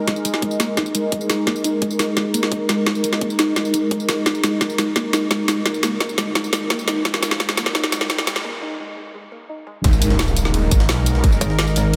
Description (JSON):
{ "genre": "dark technical drum and bass", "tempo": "172 BPM", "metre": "4/4", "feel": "straight", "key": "unclear", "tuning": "A4 = 440 Hz", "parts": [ { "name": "sweeping resonant pad", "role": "sustained chords", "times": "0.0-12.0 s", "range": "G#3 to A#4", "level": "-26 LUFS", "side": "equal", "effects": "chorus, sidechain pumping" }, { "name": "soft round pluck", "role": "arpeggios", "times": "0.1-9.8 s", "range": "G#3 to D#4", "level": "-28 LUFS", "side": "equal", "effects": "analog chorus, sidechain pumping, delay" }, { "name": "drum and bass drum kit", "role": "drums", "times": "0.1-12.0 s", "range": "hi-hat, snare drum, tambourine", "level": "-24 LUFS", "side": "equal", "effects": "none" }, { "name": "electronic kick drum", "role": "drums", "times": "0.1-11.3 s", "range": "none", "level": "-22 LUFS", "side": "equal", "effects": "high-pass filter on kick, high-pass filter on room" }, { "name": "riser and impact", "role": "sound effects", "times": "6.7-11.2 s", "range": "none", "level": "-31 LUFS", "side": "equal", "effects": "none" }, { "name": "snarling distorted saw bass", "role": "bass", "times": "9.8-11.4 s", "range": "D#1 to B1", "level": "-22 LUFS", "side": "equal", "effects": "distortion, tube saturation, sidechain pumping" }, { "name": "jungle sampler-style drum kit", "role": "drums", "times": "9.8-12.0 s", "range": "hi-hat, ride cymbal, snare drum", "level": "-34 LUFS", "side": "equal", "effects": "none" }, { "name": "metallic wobble bass", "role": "bass", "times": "11.4-12.0 s", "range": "G#1", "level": "-20 LUFS", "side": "equal", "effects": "distortion, chorus" } ], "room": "wet church reverb, RT60 3.8 s", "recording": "dreamy mix soaked in reverb, high-pass filter", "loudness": "-20 LUFS", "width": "mono", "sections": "0.0-9.8 A section; 9.8-12.0 B section", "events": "build-up 0.0-9.8; drum fill 0.0-8.4; filter sweep on synth pluck 0.0-9.8; filter sweep 0.0-9.8; riser 6.7-8.4; break 8.4-9.8; drop 9.8-12.0; impact 9.8-11.2", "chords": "0.0 G#5" }